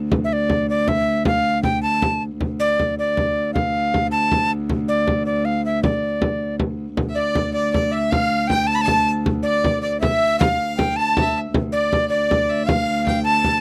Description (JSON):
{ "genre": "medieval dance", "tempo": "105 BPM (dotted quarters)", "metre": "6/8", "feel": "straight", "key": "D minor", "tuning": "A4 = 440 Hz", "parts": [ { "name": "warm viola da gamba", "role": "drone", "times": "0.0-13.6 s", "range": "D2", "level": "-27 LUFS", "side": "equal", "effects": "none" }, { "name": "frame drum", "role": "percussion", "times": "0.1-13.6 s", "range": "none", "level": "-25 LUFS", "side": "equal", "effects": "none" }, { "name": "breathy tenor recorder", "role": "melody", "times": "0.2-13.6 s", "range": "D5 to B5", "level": "-22 LUFS", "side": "equal", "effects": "none" }, { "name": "clear fiddle", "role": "second line", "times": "7.1-13.6 s", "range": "D5 to A5", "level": "-29 LUFS", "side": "equal", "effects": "slapback echo" } ], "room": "little or no reverb", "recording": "dry, close 1970s-style studio recording", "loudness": "-20 LUFS", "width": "mono", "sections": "0.0-7.0 A section; 7.0-13.6 A section", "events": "none", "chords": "none" }